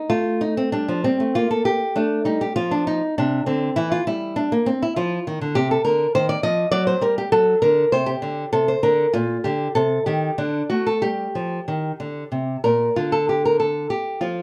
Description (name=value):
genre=classical, baroque-style dance for nylon-string guitar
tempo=90-103 BPM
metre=3/4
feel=rubato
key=G minor from 5.6 s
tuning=A4 = 441 Hz
part: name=nylon-string guitar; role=solo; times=0.0-14.4 s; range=Bb2 to Eb5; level=-21 LUFS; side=equal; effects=none
room=light reverb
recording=none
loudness=-21 LUFS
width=mono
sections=0.0-13.0 A section; 13.0-14.4 A section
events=none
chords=0.1 F13; 1.4 N.C.; 2.0 F5; 3.8 Em7b5; 5.0 Dm; 5.6 Cm11; 6.7 Gmmaj7/F#; 7.3 D7(no3); 9.1 Gm/Bb; 9.8 Cm; 10.4 D5; 11.0 Gm; 13.0 Dmadd11